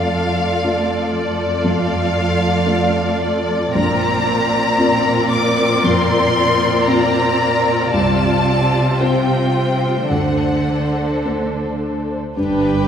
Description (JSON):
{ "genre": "cinematic, emotional film score for orchestra", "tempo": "52-60 BPM", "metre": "4/4", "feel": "rubato", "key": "unclear", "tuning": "A4 = 441 Hz", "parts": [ { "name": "rich symphonic violin section", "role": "melody", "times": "0.0-12.9 s", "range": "D5 to D6", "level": "-20 LUFS", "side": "left 2 dB", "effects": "none" }, { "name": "warm symphonic violin section", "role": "second line", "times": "0.0-12.9 s", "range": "F4 to D5", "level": "-21 LUFS", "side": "left 1 dB", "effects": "none" }, { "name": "felt-muted upright piano", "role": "accompaniment", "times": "0.0-12.9 s", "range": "Bb1 to D5", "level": "-21 LUFS", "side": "equal", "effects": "none" }, { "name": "warm studio viola section", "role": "accompaniment", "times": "0.0-12.9 s", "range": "A3 to G4", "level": "-23 LUFS", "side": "right 1 dB", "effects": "none" }, { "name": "warm symphonic cello section", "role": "bass", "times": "0.0-12.2 s", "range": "F2 to D3", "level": "-22 LUFS", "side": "right 2 dB", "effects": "none" }, { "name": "warm studio double bass section", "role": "bass", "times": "12.4-12.9 s", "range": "G1", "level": "-22 LUFS", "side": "right 5 dB", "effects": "none" } ], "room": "wet scoring stage reverb, RT60 1.8 s", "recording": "heard from further back in the room", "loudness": "-14 LUFS", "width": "side -8 dB against mid", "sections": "0.0-12.4 A section", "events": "none", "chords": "0.0 Dm/F; 3.8 Bbadd9; 7.9 Csus4; 10.1 D7; 12.4 G", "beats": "0.64 1.64 2.66 | 3.76 4.80 5.85 6.88 | 7.94 9.00 10.11 11.25 | 12.37" }